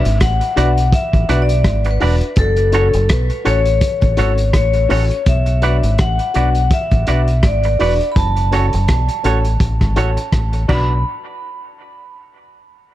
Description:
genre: roots reggae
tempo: 83 BPM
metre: 4/4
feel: swing 56% on 16ths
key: B dorian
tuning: A4 = 440 Hz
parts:
  - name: vibraphone with hard mallets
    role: melody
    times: 0.0-11.0 s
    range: A4 to B5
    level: -20 LUFS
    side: left 2 dB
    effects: dub echo
  - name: dark grand piano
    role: stabs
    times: 0.0-11.0 s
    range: C#4 to D5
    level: -24 LUFS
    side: left 2 dB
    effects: none
  - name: deep dub fingered electric bass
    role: bass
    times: 0.1-11.0 s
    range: E1 to B1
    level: -16 LUFS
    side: equal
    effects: none
  - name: vintage drum kit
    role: drums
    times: 0.1-10.9 s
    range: crash cymbal, hi-hat, kick drum, rim click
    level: -18 LUFS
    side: equal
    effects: none
  - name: semi-hollow electric guitar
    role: accompaniment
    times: 0.6-10.9 s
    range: C#4 to D5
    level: -25 LUFS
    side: right 5 dB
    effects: dub echo
room: small room ambience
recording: none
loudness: -13 LUFS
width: side -14 dB against mid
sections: 0.0-11.1 A section; 11.1-12.9 B section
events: none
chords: 0.0 Bm; 2.4 F#m; 5.3 Bm; 8.2 F#m; 10.7 Bm; 11.1 N.C.

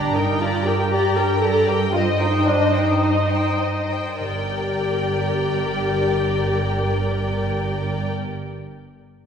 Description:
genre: quick classical-period movement for string orchestra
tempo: 95-119 BPM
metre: 4/4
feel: rubato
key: G minor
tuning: A4 = 437 Hz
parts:
  - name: muted symphonic violin section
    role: melody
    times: 0.0-8.1 s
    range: Eb5 to Bb5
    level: -28 LUFS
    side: left 4 dB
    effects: none
  - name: muted symphonic violin section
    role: second line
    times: 0.0-8.1 s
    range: G4 to Eb5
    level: -26 LUFS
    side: left 2 dB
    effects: none
  - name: muted symphonic viola section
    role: accompaniment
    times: 0.0-8.1 s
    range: D4 to Bb4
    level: -22 LUFS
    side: left 1 dB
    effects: none
  - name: muted symphonic cello section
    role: bass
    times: 0.0-8.1 s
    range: G2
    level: -24 LUFS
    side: right 3 dB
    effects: none
  - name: muted symphonic double bass section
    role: bass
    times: 0.0-0.4, 4.2-8.1 s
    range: G1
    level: -28 LUFS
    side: right 4 dB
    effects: none
room: wet concert hall reverb, RT60 2.0 s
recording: heard from further back in the room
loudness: -18 LUFS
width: side -7 dB against mid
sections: 0.0-4.2 A section; 4.2-9.1 B section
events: slowing down 0.0-4.2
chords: 0.0 Gm; 1.9 Cm/G; 4.2 Gm

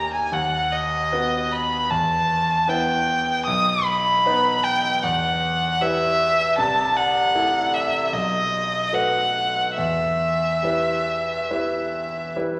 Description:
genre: classical, romantic duo for violin and grand piano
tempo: 76 BPM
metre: 4/4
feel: uneven beats, rubato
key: E minor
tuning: A4 = 440 Hz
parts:
  - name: rich violin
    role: melody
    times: 0.0-12.3 s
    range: D#5 to D#6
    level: -23 LUFS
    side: equal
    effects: none
  - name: bright concert grand piano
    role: accompaniment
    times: 0.0-12.6 s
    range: B1 to B4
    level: -28 LUFS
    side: equal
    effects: none
room: wet recital hall reverb, RT60 1.6 s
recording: vinyl crackle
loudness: -22 LUFS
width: mono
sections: 0.0-12.6 A section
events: none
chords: 0.3 B/D#; 1.9 Em; 3.5 B; 5.0 Em; 6.6 Am/C; 8.1 B7; 9.8 Em

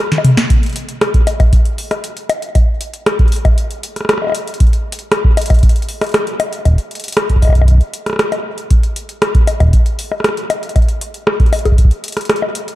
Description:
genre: IDM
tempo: 117 BPM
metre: 4/4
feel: straight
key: none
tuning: none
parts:
  - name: booming analog drum machine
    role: drums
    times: 0.0-12.8 s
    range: bongos, hi-hat, rim click, snare drum, toms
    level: -17 LUFS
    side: left 1 dB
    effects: none
  - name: electronic kick drum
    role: drums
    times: 0.5-11.9 s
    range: none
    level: -10 LUFS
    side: equal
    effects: none
room: light reverb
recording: dark, warm production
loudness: -12 LUFS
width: side -16 dB against mid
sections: 0.0-12.8 A section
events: drum fill 0.1-0.5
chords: none

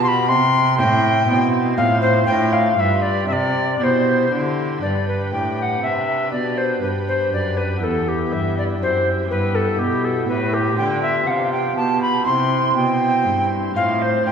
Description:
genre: classical, baroque-style sonata movement with continuo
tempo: 121 BPM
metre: 3/4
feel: straight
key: C major, G major from 4.8 s, C major from 10.8 s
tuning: A4 = 440 Hz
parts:
  - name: alto recorder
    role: melody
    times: 0.0-14.3 s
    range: G4 to C6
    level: -19 LUFS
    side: left 1 dB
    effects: none
  - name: pipe organ, cornet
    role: accompaniment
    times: 0.0-14.3 s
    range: E2 to C5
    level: -24 LUFS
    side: equal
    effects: none
  - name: warm cello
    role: bass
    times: 0.0-14.3 s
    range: E2 to D3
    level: -22 LUFS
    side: right 2 dB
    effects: none
room: wet scoring stage reverb, RT60 1.6 s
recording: heard from further back in the room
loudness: -16 LUFS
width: side -7 dB against mid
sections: 0.0-4.8 A section; 4.8-14.3 A section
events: none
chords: 0.3 C; 1.8 F/A; 2.3 Dm7/A; 2.8 G7; 3.3 C; 4.8 G; 7.8 Em; 9.3 Em/G; 10.8 G7; 12.3 C; 13.8 F/A

